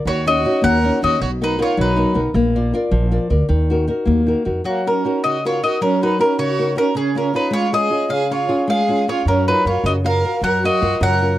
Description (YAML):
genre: italian folk, Italian serenade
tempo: 104 BPM (dotted quarters)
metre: 6/8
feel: rubato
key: Eb minor, F# major from 4.7 s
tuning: A4 = 444 Hz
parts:
  - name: flamenco guitar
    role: accompaniment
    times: 0.0-11.4 s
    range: B2 to E#5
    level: -19 LUFS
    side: left 2 dB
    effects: none
  - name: mandolin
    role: melody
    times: 0.1-2.2, 4.7-11.4 s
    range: F#4 to Gb5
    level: -20 LUFS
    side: left 1 dB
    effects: none
  - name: rich violin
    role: second line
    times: 0.1-2.2, 4.7-11.4 s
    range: A#3 to Bb4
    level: -22 LUFS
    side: right 6 dB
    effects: none
  - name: upright bass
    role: bass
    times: 0.1-4.6, 9.3-11.4 s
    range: Bb1 to F#2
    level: -20 LUFS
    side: right 1 dB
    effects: none
room: little or no reverb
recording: dry, close 1970s-style studio recording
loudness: -15 LUFS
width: side -14 dB against mid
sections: 0.0-4.7 A section; 4.7-11.4 B section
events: none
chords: 0.1 Ebm7; 1.2 Bmaj7; 2.3 Bb; 3.5 Ebm; 4.7 F#6; 6.9 C#; 9.3 F#maj7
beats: | 0.06 0.64 | 1.21 1.78 | 2.35 2.92 | 3.49 4.07 | 4.66 5.24 | 5.81 6.38 | 6.95 7.51 | 8.08 8.67 | 9.26 9.84 | 10.43 11.01